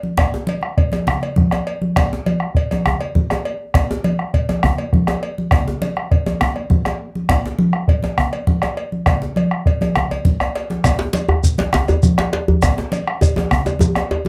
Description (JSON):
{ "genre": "west african traditional, West African drum ensemble", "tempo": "135 BPM (dotted quarters)", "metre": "12/8", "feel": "straight", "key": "none", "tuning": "none", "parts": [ { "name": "congas", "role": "percussion", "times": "0.0-14.3 s", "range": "none", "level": "-24 LUFS", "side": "equal", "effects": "none" }, { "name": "djembe", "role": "percussion", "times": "0.0-14.3 s", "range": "none", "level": "-26 LUFS", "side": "equal", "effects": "none" }, { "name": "bombo", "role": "percussion", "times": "0.2-14.1 s", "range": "none", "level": "-20 LUFS", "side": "equal", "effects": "none" }, { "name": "cowbell", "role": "percussion", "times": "0.2-14.2 s", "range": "none", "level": "-29 LUFS", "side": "equal", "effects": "none" }, { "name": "shekere", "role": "percussion", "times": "10.8-13.9 s", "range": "none", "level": "-27 LUFS", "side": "equal", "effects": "none" }, { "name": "djembe", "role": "percussion", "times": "11.0-14.3 s", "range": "none", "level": "-22 LUFS", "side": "equal", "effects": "none" } ], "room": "moderate studio reverb, RT60 0.5 s", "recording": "close, detailed microphones", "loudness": "-18 LUFS", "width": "mono", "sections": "0.0-10.8 A section; 10.8-14.3 B section", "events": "drum fill 10.1-10.8", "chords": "none", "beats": "| 0.19 0.63 1.08 1.52 | 1.97 2.41 2.85 3.30 | 3.74 4.19 4.63 5.08 | 5.52 5.96 6.41 6.85 | 7.29 7.74 8.18 8.63 | 9.07 9.52 9.96 10.40 | 10.85 11.29 11.73 12.18 | 12.62 13.06 13.51 13.95" }